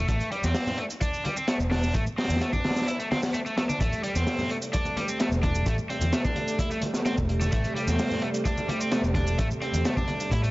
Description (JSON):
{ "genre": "breakbeat, breaks", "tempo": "129 BPM", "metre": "4/4", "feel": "straight", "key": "A minor", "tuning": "A4 = 442 Hz", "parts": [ { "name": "cranked stack guitar", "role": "riff", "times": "0.0-10.5 s", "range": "G3 to E4", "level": "-30 LUFS", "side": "equal", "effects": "overdrive, tube saturation, low-pass filter, dub echo" }, { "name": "overdriven fingered electric bass", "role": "bass", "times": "0.0-10.5 s", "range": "E1 to A2", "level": "-27 LUFS", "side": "equal", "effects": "none" }, { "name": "crunchy breakbeat drum kit", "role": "drums", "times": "0.1-10.5 s", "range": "hi-hat, kick drum, snare drum", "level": "-28 LUFS", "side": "equal", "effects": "none" }, { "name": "shaker", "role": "drums", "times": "0.1-10.5 s", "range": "none", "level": "-40 LUFS", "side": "right 2 dB", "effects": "none" }, { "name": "congas", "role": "percussion", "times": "0.7-10.4 s", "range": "none", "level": "-36 LUFS", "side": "left 1 dB", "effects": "none" }, { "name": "dark chamber string section", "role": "sustained chords", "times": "3.8-10.5 s", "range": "C3 to A3", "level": "-32 LUFS", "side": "right 1 dB", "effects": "sidechain pumping" } ], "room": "light reverb, small room ambience", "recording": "vinyl crackle, nothing above 7.6 kHz", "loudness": "-24 LUFS", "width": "side -20 dB against mid", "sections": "0.0-10.5 A section", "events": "none", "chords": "0.0 Am7" }